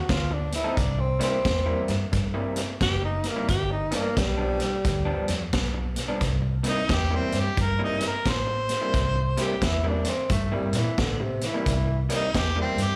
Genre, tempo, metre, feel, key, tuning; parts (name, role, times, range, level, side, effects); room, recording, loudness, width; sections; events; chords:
electric blues shuffle; 88 BPM; 4/4; swing 63% on 8ths; C mixolydian; A4 = 440 Hz
breathy tenor saxophone; second line; 0.0-12.0 s; C3 to G4; -31 LUFS; equal; slapback echo
vintage muted fingered electric bass; bass; 0.1-12.9 s; F#1 to Bb2; -30 LUFS; equal
vintage drum kit; drums; 0.1-12.9 s; hi-hat, kick drum, snare drum; -31 LUFS; equal
electric guitar through a small old amp; riff; 0.3-12.8 s; G2 to A4; -34 LUFS; equal; spring reverb, slapback echo
warm harmonica; melody; 6.7-13.0 s; C4 to C5; -30 LUFS; equal; overdrive, slapback echo
light reverb; live gig heard through the venue's PA, club reverb; -25 LUFS; mono
0.0-6.2 A section; 6.2-13.0 B section
tenor saxophone solo 0.0-6.2
0.0 F7; 0.8 C7; 3.5 G7; 6.2 C7